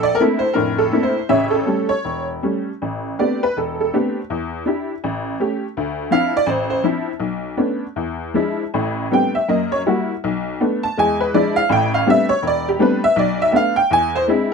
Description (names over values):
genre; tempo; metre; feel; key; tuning
solo jazz; 162 BPM; 4/4; swing 64% on 8ths, rubato; A minor; A4 = 438 Hz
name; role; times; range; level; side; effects
honky-tonk upright piano; solo; 0.0-14.5 s; E1 to A5; -16 LUFS; equal; none
room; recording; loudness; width
light reverb; minimal, uncompressed stereo recording; -17 LUFS; side -5 dB against mid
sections
0.0-2.8 A section; 2.8-14.5 B section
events
honky-tonk piano solo 2.8-14.5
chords
0.0 Bbmaj9#11; 1.3 A7; 2.8 Am11; 4.3 Em7; 5.0 A7; 5.8 Dm9; 7.2 Bm9; 8.0 E7b9; 8.7 Am11; 9.5 F#7b9; 10.2 Bm7; 11.0 E7b9; 11.7 Am11; 13.2 G13/B; 13.9 E7b13